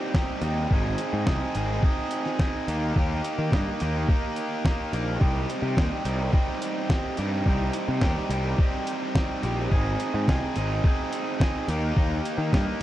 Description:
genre	indie rock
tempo	107 BPM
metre	4/4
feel	straight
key	C minor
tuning	A4 = 440 Hz
part	raw garage guitar	riff	0.0-12.8 s	G3 to Ab4	-28 LUFS	right 1 dB	overdrive
part	trip hop sampler-style drum kit	drums	0.1-12.7 s	hi-hat, kick drum, snare drum	-24 LUFS	equal	none
part	fuzz picked electric bass	bass	0.4-12.6 s	Ab1 to Eb3	-27 LUFS	equal	overdrive
room	little or no reverb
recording	dry, close 1970s-style studio recording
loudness	-23 LUFS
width	side -14 dB against mid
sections	0.0-12.8 A section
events	none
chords	0.0 Cm; 0.7 Ab; 2.7 Eb; 5.2 Cm; 9.7 Ab; 11.7 Eb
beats	0.14 | 0.70 1.27 1.83 2.39 | 2.96 3.52 4.08 4.64 | 5.21 5.77 6.33 6.89 | 7.46 8.02 8.58 9.14 | 9.71 10.27 10.83 11.39 | 11.96 12.52

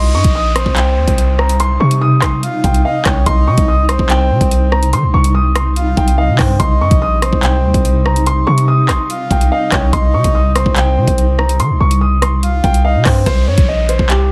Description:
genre	hip hop, drill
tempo	144 BPM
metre	4/4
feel	half-time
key	C phrygian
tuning	A4 = 441 Hz
part	dark baby grand piano	melody	0.0-14.3 s	G4 to Eb6	-21 LUFS	equal	delay
part	breathy flute-like synth lead	second line	0.0-13.3 s	C5 to F5	-24 LUFS	equal	chorus, delay
part	granular cloud pad	sustained chords	1.4-13.2 s	C3 to Eb4	-25 LUFS	equal	built-in reverb
part	hard-hitting 808-style bass	bass	0.0-14.3 s	Bb1 to Eb3	-16 LUFS	equal	none
part	downlifter	sound effects	0.0-3.3, 13.3-14.3 s	none	-32 LUFS	equal	none
part	drill drum kit	drums	0.2-14.2 s	handclaps, hi-hat, kick drum, rim click	-18 LUFS	equal	none
room	little or no reverb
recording	none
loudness	-13 LUFS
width	mono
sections	0.0-13.3 A section; 13.3-14.3 B section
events	none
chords	0.0 Cm; 13.3 C5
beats	0.35 0.76 1.18 | 1.60 2.01 2.43 2.85 | 3.26 3.68 4.10 4.51 | 4.93 5.35 5.76 6.18 | 6.60 7.01 7.43 7.85 | 8.26 8.68 9.10 9.51 | 9.93 10.35 10.76 11.18 | 11.60 12.01 12.43 12.85 | 13.26 13.68 14.10

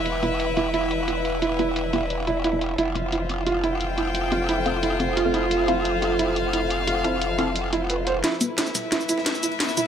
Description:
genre	dark technical drum and bass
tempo	176 BPM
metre	4/4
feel	straight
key	E phrygian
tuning	A4 = 438 Hz
part	deep dark ambient pad	sustained chords	0.0-9.9 s	E4 to E5	-29 LUFS	right 2 dB	chorus, built-in reverb
part	growl bass	bass	0.0-8.2 s	E1 to F1	-28 LUFS	equal	chorus, tube saturation
part	rich chamber string section	texture	0.0-9.9 s	E4 to G5	-28 LUFS	left 3 dB	none
part	drum and bass drum kit	drums	0.1-9.8 s	hi-hat, shaker, snare drum	-28 LUFS	left 1 dB	low-pass filter on hats, low-pass filter on perc, low-pass filter on snare, low-pass filter on room
part	felt-muted upright piano	arpeggios	0.2-9.8 s	E4 to C5	-27 LUFS	right 4 dB	low-pass filter, dub echo
part	filtered dub chord stab	stabs	0.2-9.9 s	B3 to F5	-30 LUFS	left 3 dB	phaser, dub echo
part	breakbeat sampler-style drum kit	drums	8.2-9.9 s	hi-hat, snare drum	-33 LUFS	equal	high-pass filter on hats, high-pass filter on snare, high-pass filter on room
part	riser	sound effects	8.8-9.9 s	none	-40 LUFS	right 1 dB	none
room	moderate plate reverb, RT60 1.6 s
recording	none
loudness	-21 LUFS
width	side -8 dB against mid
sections	0.0-8.2 A section; 8.2-9.9 B section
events	filter sweep on synth stab 0.0-8.2; build-up 8.2-9.9; drum fill 8.2-9.9; filter sweep on ambient pad 8.2-9.9; riser 8.8-9.9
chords	0.0 Em; 2.8 F; 8.2 Em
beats	| 0.06 0.40 0.74 1.08 | 1.42 1.76 2.10 2.44 | 2.78 3.12 3.46 3.81 | 4.15 4.49 4.83 5.17 | 5.51 5.85 6.19 6.53 | 6.87 7.21 7.56 7.90 | 8.24 8.58 8.92 9.26 | 9.60

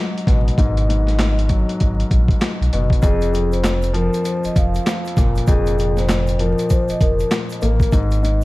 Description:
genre	hip hop, boom-bap hip-hop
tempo	98 BPM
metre	4/4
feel	swing 60% on 16ths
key	F minor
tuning	A4 = 440 Hz
part	dark baby grand piano	accompaniment	0.0-8.4 s	F2 to Bb3	-22 LUFS	left 2 dB	cassette tape, high-pass filter, low-pass filter
part	boom bap sampler-style drum kit	drums	0.2-8.4 s	handclaps, hi-hat, kick drum, snare drum	-19 LUFS	equal	none
part	sub bass with octave	bass	0.3-8.4 s	F1 to Cb2	-19 LUFS	equal	none
part	vibraphone with soft mallets	melody	3.0-7.3 s	Ab4 to F5	-24 LUFS	equal	high-pass filter, low-pass filter, digital delay
part	egg shaker	percussion	3.0-8.4 s	none	-44 LUFS	right 8 dB	none
room	small room ambience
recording	dark, warm production, vinyl crackle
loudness	-15 LUFS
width	side -19 dB against mid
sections	0.0-8.4 A section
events	none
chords	0.0 Abm9; 3.0 Fsus4; 7.9 N.C.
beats	| 0.58 1.19 1.80 2.41 | 3.03 3.64 4.25 4.86 | 5.48 6.09 6.70 7.31 | 7.92

